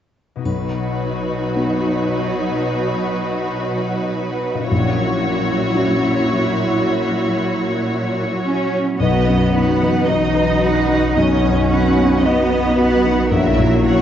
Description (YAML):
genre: cinematic, emotional film score for orchestra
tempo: 56 BPM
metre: 4/4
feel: uneven beats, rubato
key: B major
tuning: A4 = 440 Hz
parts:
  - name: clear symphonic violin section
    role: second line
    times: 0.4-14.0 s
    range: F#4 to F#5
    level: -24 LUFS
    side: left 2 dB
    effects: none
  - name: felt-muted upright piano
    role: accompaniment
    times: 0.4-14.0 s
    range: A#1 to D#5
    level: -21 LUFS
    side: left 1 dB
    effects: none
  - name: concert harp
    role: arpeggios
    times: 0.4-14.0 s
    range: A#2 to F#4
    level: -25 LUFS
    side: left 5 dB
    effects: none
  - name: warm symphonic viola section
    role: accompaniment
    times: 0.5-14.0 s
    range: F#3 to F#4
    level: -22 LUFS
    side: right 2 dB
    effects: none
  - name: clear symphonic cello section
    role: bass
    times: 0.5-14.0 s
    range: A#2 to D#4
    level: -22 LUFS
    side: right 2 dB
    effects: none
  - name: triangle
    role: percussion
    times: 0.5-2.6 s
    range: none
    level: -54 LUFS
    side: left 1 dB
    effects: none
  - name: rich symphonic double bass section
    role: bass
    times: 9.0-14.0 s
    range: A#1 to B1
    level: -23 LUFS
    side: right 2 dB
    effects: none
room: wet scoring stage reverb, RT60 1.9 s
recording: dark, warm production, nothing above 7.8 kHz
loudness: -15 LUFS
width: side -10 dB against mid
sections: 0.5-9.0 A section; 9.0-14.0 B section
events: none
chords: 0.5 B; 4.7 F#7/A#; 9.0 B; 13.3 F#7/A#